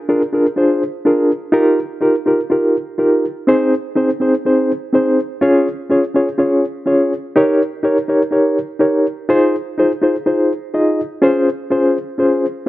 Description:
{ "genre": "soul", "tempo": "124 BPM", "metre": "4/4", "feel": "straight", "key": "Ab major", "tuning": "A4 = 440 Hz", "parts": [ { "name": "mellow reed electric piano", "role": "solo", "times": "0.1-12.7 s", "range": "C4 to Eb5", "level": "-13 LUFS", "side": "equal", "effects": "fast tremolo" } ], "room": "light reverb", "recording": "dark, warm production", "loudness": "-13 LUFS", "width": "side -16 dB against mid", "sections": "0.0-11.2 A section; 11.2-12.7 B section", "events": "none", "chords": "0.0 Bb7; 1.5 Ebadd9; 3.5 Ab; 5.4 Db; 7.4 Eb7; 9.3 Ab6; 11.2 Dbmaj7" }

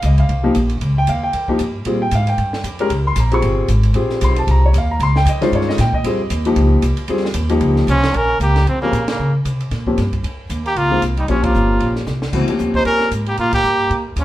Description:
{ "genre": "modal jazz", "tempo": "229 BPM", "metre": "4/4", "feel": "swing 58% on 8ths", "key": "Bb dorian", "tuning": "A4 = 440 Hz", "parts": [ { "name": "warm concert grand piano", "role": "accompaniment", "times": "0.0-13.1 s", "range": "Eb3 to Db6", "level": "-18 LUFS", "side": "left 1 dB", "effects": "none" }, { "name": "upright bass", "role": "bass", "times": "0.0-14.2 s", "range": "G1 to Db3", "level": "-17 LUFS", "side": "equal", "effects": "none" }, { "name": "compact cocktail drum kit", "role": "drums", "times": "0.0-14.2 s", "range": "crash cymbal, hi-hat, kick drum, ride cymbal, snare drum", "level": "-27 LUFS", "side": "right 1 dB", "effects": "none" }, { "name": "clear trumpet", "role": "melody", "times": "7.9-14.2 s", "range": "Bb3 to C5", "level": "-18 LUFS", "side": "right 1 dB", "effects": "none" }, { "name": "trombone with metal mute", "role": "second line", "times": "7.9-14.2 s", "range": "Db3 to Eb4", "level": "-24 LUFS", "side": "right 2 dB", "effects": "none" } ], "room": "moderate studio reverb, RT60 0.8 s", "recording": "band playing live in one room", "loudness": "-14 LUFS", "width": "side -14 dB against mid", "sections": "0.0-8.1 A section; 8.1-14.2 B section", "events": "band accent 9.1, 11.4, 13.5; drum fill 12.1", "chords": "0.0 Bbm69" }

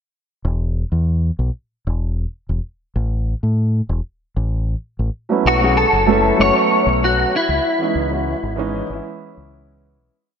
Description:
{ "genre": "sunset chillout", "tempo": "96 BPM", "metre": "4/4", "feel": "straight", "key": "E major", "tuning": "A4 = 440 Hz", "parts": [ { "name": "deep dub fingered electric bass", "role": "bass", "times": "0.4-10.1 s", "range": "E1 to A2", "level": "-19 LUFS", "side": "equal", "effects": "none" }, { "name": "dark baby grand piano", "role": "accompaniment", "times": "5.3-10.1 s", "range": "E3 to G#4", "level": "-19 LUFS", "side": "moving between equal and right 6 dB", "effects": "auto-pan, tape echo" }, { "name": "clean electric guitar", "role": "melody", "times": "5.5-9.5 s", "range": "E4 to C#5", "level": "-17 LUFS", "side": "left 1 dB", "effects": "ensemble chorus, tape echo" } ], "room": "wet lush hall reverb, RT60 2.5 s", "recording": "dreamy mix soaked in reverb", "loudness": "-16 LUFS", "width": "side -8 dB against mid", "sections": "0.1-10.1 groove", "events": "fade-out 6.8-10.1", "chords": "0.1 E5; 2.6 A5; 5.1 B9sus4; 7.3 C#m7" }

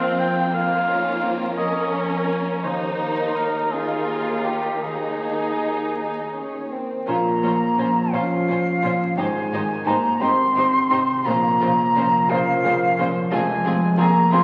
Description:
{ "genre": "cinematic, emotional film score for orchestra", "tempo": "53-60 BPM (dotted quarters)", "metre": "6/8", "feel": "rubato", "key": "unclear", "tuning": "A4 = 441 Hz", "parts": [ { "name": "warm cor anglais", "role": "second line", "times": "0.0-14.1 s", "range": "G4 to G5", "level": "-30 LUFS", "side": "equal", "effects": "none" }, { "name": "warm studio violin section", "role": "second line", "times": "0.0-14.4 s", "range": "Bb3 to Bb4", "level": "-31 LUFS", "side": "equal", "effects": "none" }, { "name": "clear studio viola section", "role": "accompaniment", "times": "0.0-14.4 s", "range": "Db3 to F4", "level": "-32 LUFS", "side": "equal", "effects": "none" }, { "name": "warm baby grand piano", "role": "accompaniment", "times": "0.0-14.4 s", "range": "F1 to Eb5", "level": "-31 LUFS", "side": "equal", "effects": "none" }, { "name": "concert harp", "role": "arpeggios", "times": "0.0-14.4 s", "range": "F2 to F5", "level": "-31 LUFS", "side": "equal", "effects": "none" }, { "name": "warm studio cello section", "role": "bass", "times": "0.0-14.4 s", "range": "Eb2 to Bb2", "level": "-35 LUFS", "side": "equal", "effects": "none" }, { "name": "rich studio violin section", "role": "melody", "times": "7.1-14.4 s", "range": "Ab4 to C5", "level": "-35 LUFS", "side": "equal", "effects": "none" }, { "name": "mellow silver concert flute", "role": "second line", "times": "7.1-14.4 s", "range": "F5 to C6", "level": "-23 LUFS", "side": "equal", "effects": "none" }, { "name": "mellow French horn section", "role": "sustained chords", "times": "7.1-14.4 s", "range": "F3 to C4", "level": "-28 LUFS", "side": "equal", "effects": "none" }, { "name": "dark studio double bass section", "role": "bass", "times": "7.1-14.4 s", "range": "F1 to Bb1", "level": "-40 LUFS", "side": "equal", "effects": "none" }, { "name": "warm clarinet", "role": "second line", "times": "7.8-14.1 s", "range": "C4 to Eb4", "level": "-38 LUFS", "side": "equal", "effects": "none" } ], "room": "wet recital hall reverb, RT60 1.7 s", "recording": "very old 78 rpm record, vinyl crackle, nothing above 10.9 kHz", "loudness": "-21 LUFS", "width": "mono", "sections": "0.0-7.1 A section; 7.1-14.4 B section", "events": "none", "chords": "0.0 Bbsus4/F; 2.6 Ebsus4; 7.1 Bbmadd9; 9.2 Abmaj7; 11.3 Bbmadd9; 13.3 Fm" }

